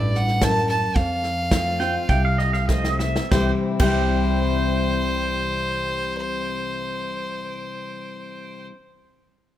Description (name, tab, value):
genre	honky-tonk and classic country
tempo	94-114 BPM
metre	4/4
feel	straight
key	C major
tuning	A4 = 439 Hz
part	clear fiddle	melody	0.0-8.7 s	C5 to A5	-26 LUFS	right 1 dB	none
part	picked steel-string acoustic guitar	accompaniment	0.0-8.7 s	F2 to F4	-26 LUFS	left 4 dB	none
part	upright bass	bass	0.0-8.7 s	A1 to F2	-25 LUFS	equal	none
part	natural country drum kit	drums	0.1-4.0 s	crash cymbal, hi-hat, kick drum, snare drum	-24 LUFS	equal	none
part	pedal steel guitar	second line	1.8-8.7 s	Eb5 to G5	-28 LUFS	right 3 dB	slapback echo
room	light reverb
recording	none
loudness	-20 LUFS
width	side -12 dB against mid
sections	0.0-3.3 A section; 3.3-8.5 B section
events	slowing down 0.0-3.3; drum fill 2.7-3.3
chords	0.0 D (rootless); 1.0 F; 3.3 C